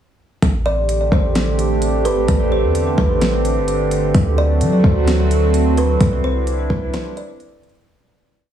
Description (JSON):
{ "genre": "hip hop, atmospheric cloud-rap", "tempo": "129 BPM", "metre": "4/4", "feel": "half-time", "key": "A dorian", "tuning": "A4 = 440 Hz", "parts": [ { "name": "warbly tape-like pad", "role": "sustained chords", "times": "0.8-7.8 s", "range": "D3 to G4", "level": "-20 LUFS", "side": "right 1 dB", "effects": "chorus, built-in reverb, phaser, sidechain pumping" }, { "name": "warm 808-style bass", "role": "bass", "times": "0.4-6.9 s", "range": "G1 to F#3", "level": "-18 LUFS", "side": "equal", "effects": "none" }, { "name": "smooth R&B drum kit", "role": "drums", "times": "0.4-7.9 s", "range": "hi-hat, kick drum, snare drum", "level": "-19 LUFS", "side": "equal", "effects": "overdrive" }, { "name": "kalimba", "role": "melody", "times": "0.7-7.4 s", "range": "B4 to D5", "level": "-22 LUFS", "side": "right 1 dB", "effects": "digital delay" } ], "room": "little or no reverb", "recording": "heavily compressed radio sound, multiband compression, studio reverb", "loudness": "-14 LUFS", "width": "side -10 dB against mid", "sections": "0.4-7.9 verse", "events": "fade-out 6.0-7.9; break 6.9-7.9", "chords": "0.4 Am7; 4.1 D7; 6.0 Cadd9" }